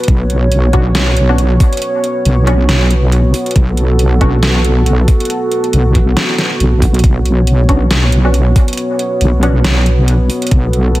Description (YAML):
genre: deep dubstep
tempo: 138 BPM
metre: 4/4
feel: swing 57% on 16ths, half-time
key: B minor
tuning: A4 = 440 Hz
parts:
  - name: dark analog pad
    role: sustained chords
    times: 0.0-11.0 s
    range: B3 to C#5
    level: -17 LUFS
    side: right 1 dB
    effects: chorus
  - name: dubstep drum kit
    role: drums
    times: 0.0-11.0 s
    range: hi-hat, snare drum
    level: -17 LUFS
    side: equal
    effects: none
  - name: wobble bass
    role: bass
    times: 0.1-11.0 s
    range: B1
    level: -11 LUFS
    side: equal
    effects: chorus
  - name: electronic kick drum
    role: drums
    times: 0.1-10.6 s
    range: none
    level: -11 LUFS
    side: equal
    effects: none
  - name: filtered dub chord stab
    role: stabs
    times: 0.7-4.3, 7.7-9.6 s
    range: B3 to F#4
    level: -22 LUFS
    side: left 1 dB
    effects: analog chorus, vintage 12-bit sampler grit, dub echo
room: digital ambience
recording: dense, heavily limited modern master, vinyl crackle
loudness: -10 LUFS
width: side -17 dB against mid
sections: 0.0-11.0 A section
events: none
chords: 0.0 Bsus2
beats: | 0.08 0.52 0.95 1.38 | 1.82 2.25 2.69 3.12 | 3.56 3.99 4.43 4.86 | 5.30 5.73 6.17 6.60 | 7.04 7.47 7.91 8.34 | 8.78 9.21 9.64 10.08 | 10.52 10.95